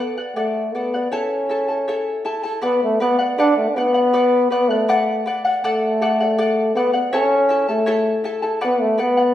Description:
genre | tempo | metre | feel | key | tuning
andean folk | 80 BPM | 2/4 | straight | B minor | A4 = 440 Hz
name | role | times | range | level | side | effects
warm trombone | melody | 0.0-9.3 s | A3 to D4 | -18 LUFS | equal | none
charango | accompaniment | 0.0-9.3 s | E4 to A5 | -22 LUFS | left 2 dB | none
room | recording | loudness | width
wet large studio reverb, RT60 1.2 s | band playing live in one room | -16 LUFS | side -12 dB against mid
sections
0.0-2.6 A section; 2.6-9.3 B section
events
none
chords
0.0 D; 1.1 A; 2.6 Bm; 5.6 D; 7.1 A; 8.6 Bm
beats
0.37 | 1.12 1.87 | 2.63 3.38 | 4.13 4.88 | 5.63 6.38 | 7.13 7.88 | 8.63

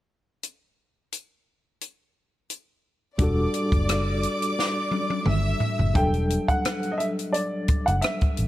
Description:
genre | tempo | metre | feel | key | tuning
lush 1970s-style soul | 87 BPM | 4/4 | swing 54% on 16ths | E minor | A4 = 440 Hz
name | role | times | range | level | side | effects
compact cocktail drum kit | drums | 0.4-8.5 s | hi-hat, kick drum, rim click, snare drum, toms | -26 LUFS | equal | none
rich studio violin section | second line | 3.2-5.9 s | D5 to E6 | -29 LUFS | equal | none
tine electric piano | accompaniment | 3.2-8.5 s | F#3 to A4 | -28 LUFS | left 1 dB | overdrive, medium tremolo
vintage muted fingered electric bass | bass | 3.2-8.5 s | E1 to A1 | -25 LUFS | equal | none
warm baby grand piano | melody | 6.0-8.5 s | D5 to G5 | -27 LUFS | right 1 dB | none
room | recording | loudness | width
light reverb, small room ambience | none | -22 LUFS | side -14 dB against mid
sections
0.4-3.2 A section; 3.2-6.0 B section; 6.0-8.5 C section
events
drum fill 4.6-6.0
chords
0.4 N.C.; 3.2 Em11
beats
| 0.44 1.13 1.82 2.51 | 3.20 3.89 4.58 5.27 | 5.96 6.65 7.34 8.03

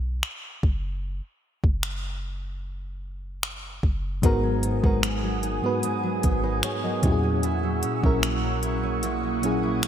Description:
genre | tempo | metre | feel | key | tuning
contemporary R&B | 75 BPM | 4/4 | straight | G# minor | A4 = 440 Hz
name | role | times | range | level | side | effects
clean 808-style bass | bass | 0.0-9.9 s | F#1 to A#2 | -30 LUFS | equal | none
smooth R&B drum kit | drums | 0.2-9.9 s | finger snaps, hi-hat, kick drum | -25 LUFS | equal | none
FM electric piano with auto-pan | accompaniment | 4.2-9.9 s | G#2 to D#5 | -26 LUFS | left 2 dB | none
ethereal airy pad | sustained chords | 4.7-9.9 s | A#3 to E6 | -30 LUFS | right 2 dB | ensemble chorus, built-in reverb
fingerpicked steel-string acoustic guitar | arpeggios | 4.2-9.9 s | G#2 to E4 | -31 LUFS | right 6 dB | ping-pong delay
room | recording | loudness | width
moderate lush hall reverb, RT60 2.5 s | bright 1980s-style digital production | -23 LUFS | side -9 dB against mid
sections
0.0-9.9 A section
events
break 0.0-4.2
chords
0.0 N.C.; 4.2 G#m7; 7.0 F#7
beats
0.23 | 1.03 1.83 2.63 3.43 | 4.23 5.03 5.83 6.63 | 7.43 8.23 9.03 9.83

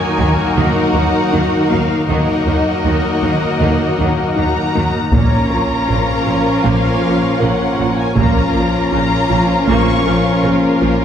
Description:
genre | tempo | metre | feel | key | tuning
cinematic, hybrid orchestral and electronic film score | 79 BPM | 4/4 | straight | Bb minor | A4 = 440 Hz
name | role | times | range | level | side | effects
dark symphonic violin section | melody | 0.0-10.4 s | Eb5 to Db6 | -22 LUFS | left 3 dB | none
rich studio violin section | second line | 0.0-11.0 s | F4 to Bb4 | -22 LUFS | left 2 dB | none
rich symphonic viola section | accompaniment | 0.0-11.0 s | Db3 to Eb4 | -21 LUFS | right 2 dB | none
brassy analog pad | sustained chords | 0.0-11.0 s | Bb3 to Gb5 | -21 LUFS | left 1 dB | chorus
mellow French horn section | sustained chords | 0.0-11.0 s | F3 to Eb4 | -21 LUFS | left 2 dB | none
warbly dusty pluck | arpeggios | 0.0-11.0 s | Eb3 to Bb4 | -25 LUFS | right 1 dB | none
clear symphonic cello section | bass | 0.2-10.9 s | Bb2 to Eb3 | -22 LUFS | right 1 dB | none
rich symphonic double bass section | bass | 0.2-10.9 s | Bb1 to Eb2 | -20 LUFS | right 2 dB | none
taiko ensemble | drums | 0.2-0.5, 5.1-8.9 s | none | -18 LUFS | equal | none
room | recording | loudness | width
wet recital hall reverb, RT60 1.6 s | heard from further back in the room | -12 LUFS | side -9 dB against mid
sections
0.0-11.0 A section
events
none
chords
0.0 Ebm; 5.1 Bbm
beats
0.57 1.33 | 2.09 2.85 3.60 4.37 | 5.12 5.88 6.64 7.40 | 8.16 8.92 9.68 10.44

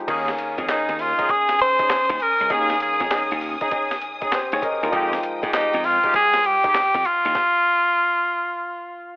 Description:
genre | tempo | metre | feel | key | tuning
R&B, new jack swing | 99 BPM | 4/4 | swing 66% on 16ths | unclear | A4 = 438 Hz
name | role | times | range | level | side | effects
clear concert grand piano | accompaniment | 0.0-7.4 s | Eb3 to G5 | -28 LUFS | left 1 dB | none
warm studio string section | sustained chords | 0.1-7.3 s | Ab3 to Eb6 | -32 LUFS | left 1 dB | none
dark horn section | stabs | 0.1-6.8 s | Ab3 to Ab4 | -26 LUFS | equal | none
glassy slap bass | bass | 0.1-7.3 s | Db2 to Ab2 | -28 LUFS | equal | none
boom bap sampler-style drum kit | drums | 0.1-7.5 s | crash cymbal, handclaps, hi-hat, kick drum, snare drum | -28 LUFS | equal | none
edgy tenor saxophone | melody | 0.7-9.2 s | Eb4 to C5 | -18 LUFS | equal | none
room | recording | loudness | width
light reverb, studio ambience | telephone sound | -18 LUFS | side -26 dB against mid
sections
0.1-9.2 A section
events
stop 7.4-9.2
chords
0.1 Eb7sus4; 4.9 Fm9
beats
| 0.08 0.68 1.29 1.90 | 2.50 3.11 3.71 4.32 | 4.93 5.53 6.14 6.75 | 7.35 7.96 8.56

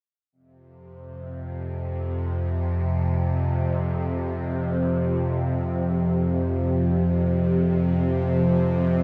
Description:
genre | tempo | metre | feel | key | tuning
ambient | free time | none | none | unclear | A4 = 439 Hz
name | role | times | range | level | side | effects
bowed-like drone | solo | 1.0-9.0 s | F2 to C3 | -24 LUFS | equal | built-in reverb, phaser, delay
room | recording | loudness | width
wet huge ambient reverb, RT60 8.2 s | in a vast, echoing space | -24 LUFS | mono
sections
0.3-9.0 A section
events
none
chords
0.3 F5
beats
free time

